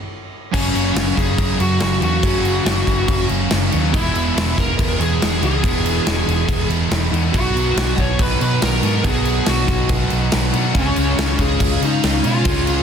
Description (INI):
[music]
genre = hard rock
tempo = 141 BPM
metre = 4/4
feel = straight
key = F# mixolydian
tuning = A4 = 440 Hz
[part]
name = bluesy overdriven lead guitar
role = melody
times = 0.5-12.8 s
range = C#4 to C#5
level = -23 LUFS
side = left 1 dB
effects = distortion, analog delay
[part]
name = distorted electric guitar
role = riff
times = 0.5-12.8 s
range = E2 to C#4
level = -26 LUFS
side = left 13 dB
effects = distortion
[part]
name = overdriven semi-hollow guitar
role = riff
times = 0.5-12.8 s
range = E2 to C#4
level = -24 LUFS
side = right 12 dB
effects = none
[part]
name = tight distorted guitar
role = riff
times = 0.5-12.8 s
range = F#2 to F#4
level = -27 LUFS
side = left 2 dB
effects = distortion
[part]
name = hollow-body short-scale fingered electric bass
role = bass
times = 0.5-12.8 s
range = E1 to C#3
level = -21 LUFS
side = equal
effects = none
[part]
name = big rock drum kit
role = drums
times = 0.5-12.8 s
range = crash cymbal, kick drum, snare drum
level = -20 LUFS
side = equal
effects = none
[part]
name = overdriven tonewheel organ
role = sustained chords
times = 7.3-12.8 s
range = B3 to G#5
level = -33 LUFS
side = left 1 dB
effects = none
[sound]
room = light reverb, studio ambience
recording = dense, heavily limited modern master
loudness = -15 LUFS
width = side -7 dB against mid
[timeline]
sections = 0.5-12.8 A section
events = stop 0.0-0.5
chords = 0.0 N.C.; 0.5 F#; 3.9 E; 7.3 B; 10.7 C#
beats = 0.10 | 0.53 0.96 1.38 1.81 | 2.23 2.66 3.08 3.51 | 3.93 4.36 4.79 5.21 | 5.64 6.06 6.49 6.91 | 7.34 7.76 8.19 8.62 | 9.04 9.47 9.89 10.32 | 10.75 11.18 11.60 12.03 | 12.46